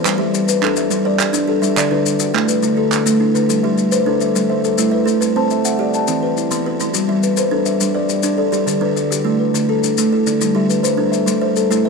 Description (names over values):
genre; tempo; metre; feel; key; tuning
southern african traditional, mbira-style interlocking cycle; 139 BPM (dotted quarters); 12/8; straight; unclear; A4 = 440 Hz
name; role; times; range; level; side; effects
buzzing kalimba; arpeggios; 0.0-11.9 s; D3 to F#5; -18 LUFS; right 8 dB; none
kalimba; arpeggios; 0.0-11.9 s; D3 to A5; -18 LUFS; left 9 dB; none
group handclap; percussion; 0.1-3.0 s; none; -22 LUFS; right 9 dB; none
maracas; percussion; 0.1-11.8 s; none; -25 LUFS; left 12 dB; none
room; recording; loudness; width
wet echo chamber reverb, RT60 1.6 s, small room ambience; 1960s-style stereo with parts hard left and right; -14 LUFS; side -4 dB against mid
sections
0.0-3.5 A section; 3.5-11.9 A section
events
none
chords
0.0 Em; 1.8 D; 3.5 G; 4.4 Am; 5.2 C; 6.1 Em; 8.7 D; 10.4 G; 11.3 Am